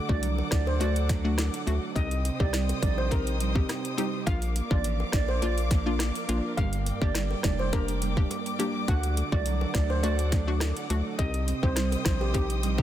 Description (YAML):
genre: dancehall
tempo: 104 BPM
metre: 4/4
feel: straight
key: unclear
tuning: A4 = 440 Hz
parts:
  - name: hollow square pluck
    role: accompaniment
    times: 0.0-12.8 s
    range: A3 to G4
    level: -34 LUFS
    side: left 4 dB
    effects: chorus
  - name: muted studio string section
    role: sustained chords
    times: 0.0-12.8 s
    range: A4 to Eb6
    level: -37 LUFS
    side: left 4 dB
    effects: sidechain pumping
  - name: nylon-string guitar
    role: arpeggios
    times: 0.0-12.8 s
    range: G2 to Eb4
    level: -34 LUFS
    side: right 8 dB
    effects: digital delay
  - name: steel pan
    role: melody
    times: 0.1-12.8 s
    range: G4 to F#5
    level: -34 LUFS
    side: right 3 dB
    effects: none
  - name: round analog bass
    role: bass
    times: 0.1-12.8 s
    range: F1 to D2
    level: -28 LUFS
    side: equal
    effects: none
  - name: island pop drum kit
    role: drums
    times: 0.1-12.8 s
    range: hi-hat, kick drum, rim click, snare drum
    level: -28 LUFS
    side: equal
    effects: none
  - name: bongos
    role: percussion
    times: 0.4-12.5 s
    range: none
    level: -43 LUFS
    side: left 4 dB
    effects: none
room: little or no reverb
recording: dense, heavily limited modern master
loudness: -25 LUFS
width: side -12 dB against mid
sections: 0.0-12.8 A section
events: none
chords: 0.0 D; 2.0 Cm; 4.3 Bb; 6.6 Gm; 8.9 D; 11.2 Cm